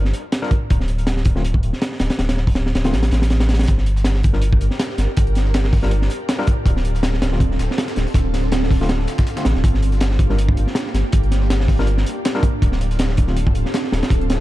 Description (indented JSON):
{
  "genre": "drum and bass, jungle",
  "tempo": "161 BPM",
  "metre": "4/4",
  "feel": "swing 55% on 16ths",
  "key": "G minor",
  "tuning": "A4 = 440 Hz",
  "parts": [
    { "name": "saturated sub bass", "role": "bass", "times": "0.0-14.4 s", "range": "D1 to A1", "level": "-19 LUFS", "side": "equal", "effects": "tube saturation" },
    { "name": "crunchy breakbeat drum kit", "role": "drums", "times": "0.1-14.4 s", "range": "hi-hat, kick drum, snare drum", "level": "-19 LUFS", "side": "equal", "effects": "none" },
    { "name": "overdriven tine electric piano", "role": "stabs", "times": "0.4-13.4 s", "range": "D3 to Bb4", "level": "-28 LUFS", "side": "left 2 dB", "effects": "medium tremolo, dub echo" },
    { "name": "ethereal airy pad", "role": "sustained chords", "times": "4.3-14.4 s", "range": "Bb3 to Bb4", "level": "-27 LUFS", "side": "right 2 dB", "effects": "ensemble chorus, built-in reverb, vintage 12-bit sampler grit" },
    { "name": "dusty soul sampler-style drum kit", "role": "drums", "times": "3.7-14.4 s", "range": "hi-hat, snare drum", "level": "-36 LUFS", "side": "left 2 dB", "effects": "overdrive, high-pass filter on hats, high-pass filter on snare" }
  ],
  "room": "small room ambience",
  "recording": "dark, warm production",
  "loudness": "-16 LUFS",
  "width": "side -16 dB against mid",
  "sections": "0.0-14.4 A section",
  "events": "kick drops out 2.9-3.7",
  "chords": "0.0 Gm7; 0.7 D5; 3.7 Gm7; 6.7 Dm7; 9.6 Gm7; 12.6 Dm7",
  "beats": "0.32 | 0.70 1.07 1.44 1.81 | 2.19 2.56 2.93 3.31 | 3.68 4.05 4.42 4.80 | 5.17 5.54 5.91 6.29 | 6.66 7.03 7.41 7.78 | 8.15 8.52 8.90 9.27 | 9.64 10.01 10.39 10.76 | 11.13 11.50 11.88 12.25 | 12.62 12.99 13.37 13.74 | 14.11"
}